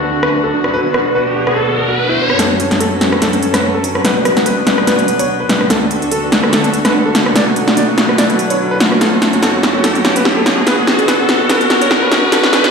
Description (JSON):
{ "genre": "heavy wobble dubstep", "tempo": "145 BPM", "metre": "4/4", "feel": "swing 55% on 16ths, half-time", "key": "unclear", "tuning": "A4 = 440 Hz", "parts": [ { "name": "clear concert grand piano", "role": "melody", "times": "0.0-12.7 s", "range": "B3 to D5", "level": "-18 LUFS", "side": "right 2 dB", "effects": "low-pass filter, digital delay" }, { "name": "warm chamber string section", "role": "sustained chords", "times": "0.0-12.7 s", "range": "D2 to B4", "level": "-19 LUFS", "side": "left 2 dB", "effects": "low-pass filter" }, { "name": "riser", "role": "sound effects", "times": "0.1-12.7 s", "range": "none", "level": "-20 LUFS", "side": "equal", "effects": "none" }, { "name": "granular cloud pad", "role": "texture", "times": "0.0-12.7 s", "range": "C#4 to F#5", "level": "-21 LUFS", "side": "right 1 dB", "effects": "built-in reverb" }, { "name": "big-room dance drum kit", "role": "drums", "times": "0.2-12.7 s", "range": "hi-hat, rim click, snare drum", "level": "-14 LUFS", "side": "equal", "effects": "overdrive, low-pass filter on snare, low-pass filter on hats, low-pass filter on room" } ], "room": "moderate lush hall reverb, RT60 1.6 s, digital ambience", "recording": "played on a big sound system in a bare room, large studio reverb, high-pass filter, low-pass filter", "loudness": "-11 LUFS", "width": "side -5 dB against mid", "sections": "0.0-2.4 A section; 2.4-12.7 B section", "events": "filter sweep 0.0-2.4; riser 0.1-2.4, 2.4-12.7; build-up 2.4-12.7; drum fill 2.4-12.7; filter sweep on grand piano 2.4-12.7", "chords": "0.0 D; 0.7 Bm; 2.4 F#m; 4.0 Bm; 5.7 D; 7.4 Bm; 9.0 F#m; 10.7 Bm" }